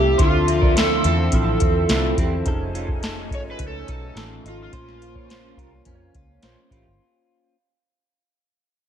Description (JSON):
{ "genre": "indie pop, bedroom pop", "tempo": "106 BPM", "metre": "4/4", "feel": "straight", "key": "unclear", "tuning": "A4 = 442 Hz", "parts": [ { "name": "overdriven slide guitar", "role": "melody", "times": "0.0-5.7 s", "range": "F4 to C#5", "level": "-24 LUFS", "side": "right 1 dB", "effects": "wide subtle chorus, digital delay" }, { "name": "electric guitar through a small old amp", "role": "second line", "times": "0.0-6.8 s", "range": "C#4 to D5", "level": "-31 LUFS", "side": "right 5 dB", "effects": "wide subtle chorus, digital delay" }, { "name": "direct-recorded clean electric guitar", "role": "accompaniment", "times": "0.0-7.6 s", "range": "D3 to C5", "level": "-30 LUFS", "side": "left 4 dB", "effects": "analog chorus, warbly pitch drift" }, { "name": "warm analog keys", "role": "accompaniment", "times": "0.0-7.0 s", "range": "C4 to G#5", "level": "-31 LUFS", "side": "right 5 dB", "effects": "chorus, cassette tape" }, { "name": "phased analog pad", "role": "sustained chords", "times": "0.0-7.0 s", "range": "Db3 to G#5", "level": "-32 LUFS", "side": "left 3 dB", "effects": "phaser, chorus" }, { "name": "vintage muted fingered electric bass", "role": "bass", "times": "0.0-7.0 s", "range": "F1 to F2", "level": "-24 LUFS", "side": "equal", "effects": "none" }, { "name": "soft vintage rhythm box", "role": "drums", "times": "0.2-6.8 s", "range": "hi-hat, kick drum, snare drum", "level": "-22 LUFS", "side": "equal", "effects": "overdrive" } ], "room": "light reverb, digital ambience", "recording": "dark, warm production", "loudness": "-17 LUFS", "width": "side -9 dB against mid", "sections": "0.0-7.0 A section", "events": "fade-out 0.0-7.0", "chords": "0.2 Dm9; 2.5 F7alt; 4.7 Bbmadd9" }